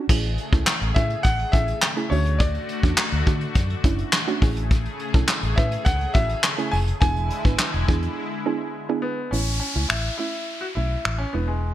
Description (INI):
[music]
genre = dance-pop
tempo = 104 BPM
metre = 4/4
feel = straight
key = A major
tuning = A4 = 444 Hz
[part]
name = soft round pluck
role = accompaniment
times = 0.0-11.7 s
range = G#3 to B4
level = -29 LUFS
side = right 6 dB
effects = chorus, sidechain pumping
[part]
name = lush unison pad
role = sustained chords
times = 0.1-9.3 s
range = C#3 to G#4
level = -32 LUFS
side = left 3 dB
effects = chorus, phaser, sidechain pumping
[part]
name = vintage muted fingered electric bass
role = bass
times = 0.1-11.7 s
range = E1 to D3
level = -25 LUFS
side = equal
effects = sidechain pumping
[part]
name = vintage brush drum kit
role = drums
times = 0.1-11.2 s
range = crash cymbal, finger snaps, handclaps, hi-hat, kick drum, snare drum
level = -21 LUFS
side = equal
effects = gated reverb
[part]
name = clear grand piano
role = melody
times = 0.9-11.7 s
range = G#3 to G#5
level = -29 LUFS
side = equal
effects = none
[part]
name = downlifter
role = sound effects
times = 9.3-11.7 s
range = none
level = -30 LUFS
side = left 1 dB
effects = none
[sound]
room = little or no reverb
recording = bright 1980s-style digital production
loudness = -20 LUFS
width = side -13 dB against mid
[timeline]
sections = 0.1-9.3 A section; 9.3-11.7 B section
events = break 8.2-9.3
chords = 0.1 Amaj7; 2.1 Dmaj7; 4.4 Amaj7; 7.0 E7; 9.3 A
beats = | 0.09 0.67 1.25 1.82 | 2.40 2.98 3.56 4.13 | 4.71 5.29 5.86 6.44 | 7.02 7.59 8.17 8.75 | 9.32 9.90 10.48 11.05 | 11.63